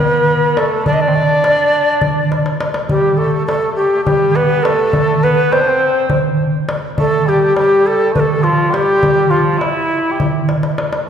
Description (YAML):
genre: Turkish makam ensemble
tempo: 206 BPM (eighths)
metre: 7/8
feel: straight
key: unclear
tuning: A4 = 440 Hz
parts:
  - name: breathy bright ney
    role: melody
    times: 0.0-10.3 s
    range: E4 to Eb5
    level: -14 LUFS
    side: left 1 dB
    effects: none
  - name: mellow cor anglais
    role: second line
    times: 0.0-10.3 s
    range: F3 to G4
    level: -21 LUFS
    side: right 3 dB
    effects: none
  - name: darbuka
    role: percussion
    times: 0.6-11.1 s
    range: none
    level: -17 LUFS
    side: equal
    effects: none
room: wet concert hall reverb, RT60 2.2 s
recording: recorded in a church or concert hall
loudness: -12 LUFS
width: side -8 dB against mid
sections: 0.0-2.9 A section; 2.9-11.1 B section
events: drum fill 2.3-2.9, 10.5-11.1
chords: none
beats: 0.00 0.29 0.58 | 0.87 1.16 1.45 1.74 2.04 2.33 2.62 | 2.91 3.20 3.49 3.78 4.07 4.36 4.65 | 4.94 5.24 5.53 5.82 6.11 6.40 6.69 | 6.98 7.28 7.57 7.86 8.15 8.44 8.73 | 9.03 9.32 9.61 9.90 10.20 10.49 10.78